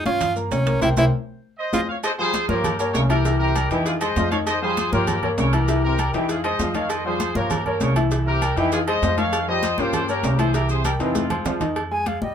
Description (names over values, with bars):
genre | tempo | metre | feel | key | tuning
latin, salsa | 197 BPM | 4/4 | straight | F minor | A4 = 439 Hz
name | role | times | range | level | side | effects
clear tenor saxophone | melody | 0.0-1.8 s | Db4 to F4 | -22 LUFS | right 2 dB | none
clear grand piano | accompaniment | 0.1-12.3 s | C3 to Db6 | -26 LUFS | left 3 dB | none
upright bass | bass | 0.1-12.3 s | C2 to G2 | -24 LUFS | right 1 dB | none
bongos and cowbell | percussion | 0.1-12.2 s | none | -33 LUFS | left 2 dB | none
congas | percussion | 0.1-12.3 s | none | -30 LUFS | left 2 dB | none
maracas | percussion | 0.1-11.8 s | none | -37 LUFS | right 6 dB | none
timbales and agogo bells | percussion | 0.1-12.2 s | none | -30 LUFS | right 4 dB | none
clear horn section | melody | 1.6-11.6 s | C4 to F5 | -24 LUFS | equal | none
brilliant trombone section | second line | 2.2-11.6 s | C3 to G3 | -29 LUFS | right 1 dB | none
bright reedy silver concert flute | melody | 11.9-12.3 s | Eb5 to Ab5 | -25 LUFS | right 1 dB | none
room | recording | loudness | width
moderate small room reverb, RT60 0.5 s | minimal, uncompressed stereo recording | -19 LUFS | side -8 dB against mid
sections
0.0-2.0 A section; 2.0-11.8 B section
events
band accent 0.8-2.0; drum fill 1.4-2.0, 11.2-11.8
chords
0.2 Gm7b5; 0.8 C7(no3); 1.4 Fm7; 2.0 Fmadd9; 2.6 Gdim; 3.3 C7; 3.9 Fm9; 5.1 Gdim; 5.7 C7; 6.3 Fm9; 7.5 Gdim; 8.1 C7; 8.7 Fm9; 9.9 Gdim; 10.5 C7; 11.2 Fm7; 11.8 Fmadd9